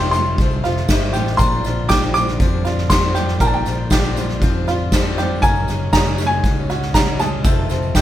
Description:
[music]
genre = indie folk with a building arrangement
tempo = 119 BPM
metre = 4/4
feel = straight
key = Bb major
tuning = A4 = 440 Hz
[part]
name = warm upright piano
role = melody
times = 0.0-8.0 s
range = G5 to D6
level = -21 LUFS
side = equal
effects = none
[part]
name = picked swing-style acoustic guitar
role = accompaniment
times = 0.0-8.0 s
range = F2 to Gb4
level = -26 LUFS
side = left 5 dB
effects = none
[part]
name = bluegrass banjo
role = arpeggios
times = 0.0-8.0 s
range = F4 to Bb4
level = -26 LUFS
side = right 3 dB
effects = none
[part]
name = fingered electric bass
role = bass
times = 0.0-8.0 s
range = F1 to F2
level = -22 LUFS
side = equal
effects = none
[part]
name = tambourine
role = percussion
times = 0.0-8.0 s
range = none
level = -36 LUFS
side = right 6 dB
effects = none
[part]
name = soft-mallet drum kit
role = drums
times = 0.1-8.0 s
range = kick drum, snare drum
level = -18 LUFS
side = equal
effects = none
[sound]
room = moderate studio reverb, RT60 0.5 s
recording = band playing live in one room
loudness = -15 LUFS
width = side -12 dB against mid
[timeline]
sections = 0.0-8.0 A section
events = none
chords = 0.0 F7; 1.4 Bbadd9; 5.4 Gbsus2; 7.4 F7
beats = 0.39 0.89 | 1.39 1.90 2.40 2.91 | 3.41 3.92 4.42 4.92 | 5.43 5.93 6.43 6.94 | 7.44 7.95

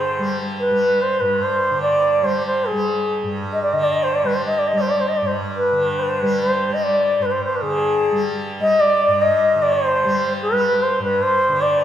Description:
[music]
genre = indian classical, Hindustani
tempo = 147 BPM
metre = 3/4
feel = straight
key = G raga bhairav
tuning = A4 = 440 Hz
[part]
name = bansuri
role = melody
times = 0.0-11.8 s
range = Ab4 to Eb5+22c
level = -17 LUFS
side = equal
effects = none
[part]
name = tanpura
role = drone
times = 0.0-11.8 s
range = G2 to G3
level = -25 LUFS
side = right 1 dB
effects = none
[sound]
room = wet scoring stage reverb, RT60 1.6 s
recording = recorded in a church or concert hall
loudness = -16 LUFS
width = side -10 dB against mid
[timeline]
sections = 0.0-7.6 A section; 7.6-11.8 B section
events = speeding up 0.0-11.8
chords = none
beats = | 0.18 0.60 1.01 | 1.43 1.85 2.26 | 2.68 3.09 3.51 | 3.92 4.33 4.74 | 5.15 5.56 5.97 | 6.38 6.79 7.20 | 7.60 8.01 8.41 | 8.81 9.22 9.62 | 10.02 10.42 10.82 | 11.22 11.62

